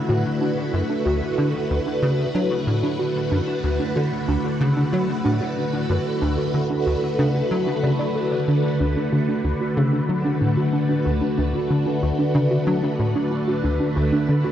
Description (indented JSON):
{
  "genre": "ambient, sequencer-driven space music",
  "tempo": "93 BPM",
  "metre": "4/4",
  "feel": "straight",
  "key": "D major",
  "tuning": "A4 = 440 Hz",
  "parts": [
    { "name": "phased string machine", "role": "sustained chords", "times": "0.0-14.5 s", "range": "D3 to B4", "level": "-22 LUFS", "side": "equal", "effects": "ensemble chorus, phaser" },
    { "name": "warbly dusty pluck", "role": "arpeggios", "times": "0.0-14.5 s", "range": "D4 to D5", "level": "-26 LUFS", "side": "right 1 dB", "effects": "chorus, auto-pan, cassette tape, ping-pong delay" },
    { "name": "tight sequencer bass", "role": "riff", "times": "0.1-14.4 s", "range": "D2 to F#3", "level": "-24 LUFS", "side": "equal", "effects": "ensemble chorus, ping-pong delay" }
  ],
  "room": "wet huge ambient reverb, RT60 8.7 s",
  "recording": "worn, warbling old tape, cassette tape, warbly pitch drift",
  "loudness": "-19 LUFS",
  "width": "side -10 dB against mid",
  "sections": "0.0-14.5 A section",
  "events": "none",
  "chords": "0.0 D6",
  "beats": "0.41 | 1.06 1.71 2.35 3.00 | 3.64 4.29 4.93 5.58 | 6.22 6.87 7.51 8.16 | 8.80 9.45 10.09 10.74 | 11.38 12.03 12.67 13.32 | 13.96"
}